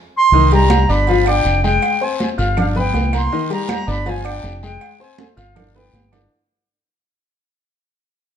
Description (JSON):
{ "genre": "latin, salsa", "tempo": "160 BPM", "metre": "4/4", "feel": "straight", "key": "unclear", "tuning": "A4 = 445 Hz", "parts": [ { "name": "bright reedy concert flute", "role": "melody", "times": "0.2-6.1 s", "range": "F5 to C6", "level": "-19 LUFS", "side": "right 2 dB", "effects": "none" }, { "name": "clear concert grand piano", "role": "accompaniment", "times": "0.3-6.3 s", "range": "Eb3 to F6", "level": "-20 LUFS", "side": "left 4 dB", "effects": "none" }, { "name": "fingered electric bass", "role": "bass", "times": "0.3-6.3 s", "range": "F1 to C2", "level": "-18 LUFS", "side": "right 1 dB", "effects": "none" }, { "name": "congas", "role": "percussion", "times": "0.3-6.3 s", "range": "none", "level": "-24 LUFS", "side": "right 1 dB", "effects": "none" }, { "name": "guiro", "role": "percussion", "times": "0.3-6.3 s", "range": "none", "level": "-34 LUFS", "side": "left 5 dB", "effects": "none" }, { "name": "agogo bells and timbales", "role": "percussion", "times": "0.5-6.3 s", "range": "none", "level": "-27 LUFS", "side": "right 10 dB", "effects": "none" }, { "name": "claves", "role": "percussion", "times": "0.7-6.3 s", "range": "none", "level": "-36 LUFS", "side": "right 3 dB", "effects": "none" } ], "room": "moderate large studio reverb, RT60 1.2 s", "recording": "dark, warm production", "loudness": "-14 LUFS", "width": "side -8 dB against mid", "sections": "0.3-6.3 A section", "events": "drum fill 0.0-0.3, 5.2-6.3; band accent 0.0-0.3; fade-out 0.3-6.3", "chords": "0.3 Cm7; 1.1 G5; 1.8 Fmadd9; 2.6 G; 3.3 Cm9; 4.1 G5; 4.8 Fmadd9; 5.6 G" }